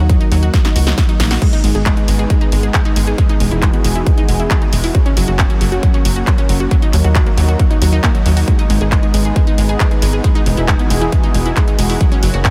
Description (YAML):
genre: uplifting trance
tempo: 136 BPM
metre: 4/4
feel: straight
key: G# minor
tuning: A4 = 440 Hz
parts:
  - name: lush unison pad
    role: sustained chords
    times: 0.0-12.5 s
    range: E3 to G#4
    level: -24 LUFS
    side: equal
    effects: chorus, sidechain pumping
  - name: unison pluck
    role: arpeggios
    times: 0.0-12.5 s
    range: F#3 to G#4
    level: -23 LUFS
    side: equal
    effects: sidechain pumping, tape echo
  - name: tight sequencer bass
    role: bass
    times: 0.0-12.5 s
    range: E1 to D#2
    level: -18 LUFS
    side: equal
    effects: sidechain pumping
  - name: big-room dance drum kit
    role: drums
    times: 0.1-12.5 s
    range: crash cymbal, handclaps, hi-hat, snare drum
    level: -25 LUFS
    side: equal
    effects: sidechain pumping on hats, sidechain pumping on cymbals
  - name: electronic kick drum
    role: drums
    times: 0.1-12.5 s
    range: none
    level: -16 LUFS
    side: equal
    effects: none
room: light reverb, digital ambience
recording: none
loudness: -14 LUFS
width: mono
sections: 0.0-12.5 A section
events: filter sweep on analog synth pad 0.0-12.5; drum fill 0.5-1.4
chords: 0.0 D#m; 1.4 G#m; 3.2 Emaj7; 4.9 F#; 6.7 D#m; 8.5 G#m; 10.2 Emaj7